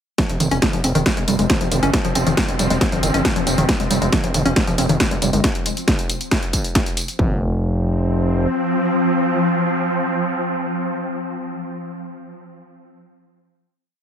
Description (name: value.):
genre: driving peak-time techno.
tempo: 137 BPM.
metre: 4/4.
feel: straight.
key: unclear.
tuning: A4 = 441 Hz.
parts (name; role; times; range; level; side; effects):
warbly dusty pluck; riff; 0.2-7.4 s; Eb3 to Db4; -22 LUFS; equal; chorus, tube saturation, sidechain pumping, ping-pong delay.
swarming drone; drone; 1.3-11.5 s; F3 to C4; -22 LUFS; equal; built-in reverb, sidechain pumping.
electronic kick drum; drums; 0.2-7.3 s; none; -22 LUFS; equal; distortion.
punchy analog drum machine; drums; 0.2-7.2 s; hi-hat, snare drum, tambourine; -21 LUFS; equal; overdrive.
gritty driven synth bass; bass; 0.3-8.5 s; F1 to G1; -20 LUFS; equal; sidechain pumping.
room: light reverb.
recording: heavily compressed radio sound.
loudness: -17 LUFS.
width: side -8 dB against mid.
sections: 0.2-7.2 drop; 7.2-10.7 final chord.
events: drop 0.2-7.2.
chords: 0.2 F5.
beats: | 0.18 0.62 1.06 1.50 | 1.94 2.37 2.81 3.25 | 3.69 4.12 4.56 5.00 | 5.44 5.88 6.31 6.75 | 7.19 7.63 8.07 8.50 | 8.94 9.38 9.82 10.26.